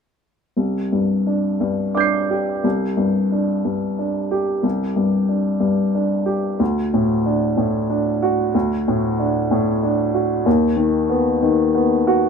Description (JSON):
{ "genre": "neoclassical minimalist piano", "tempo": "61 BPM (dotted quarters)", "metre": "6/8", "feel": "rubato", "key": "unclear", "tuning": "A4 = 440 Hz", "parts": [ { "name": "warm upright piano", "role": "solo", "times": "0.6-12.3 s", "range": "C2 to C7", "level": "-17 LUFS", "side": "equal", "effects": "none" } ], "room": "moderate studio reverb, RT60 0.6 s", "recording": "minimal, uncompressed stereo recording", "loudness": "-17 LUFS", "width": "side -6 dB against mid", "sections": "0.6-2.6 A section; 2.6-12.3 B section", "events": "none", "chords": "0.6 Csus2; 6.6 D; 10.5 B/D#", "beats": "| 0.57 1.60 | 2.64 3.65 | 4.64 5.62 | 6.60 7.57 | 8.54 9.50 | 10.46 11.42" }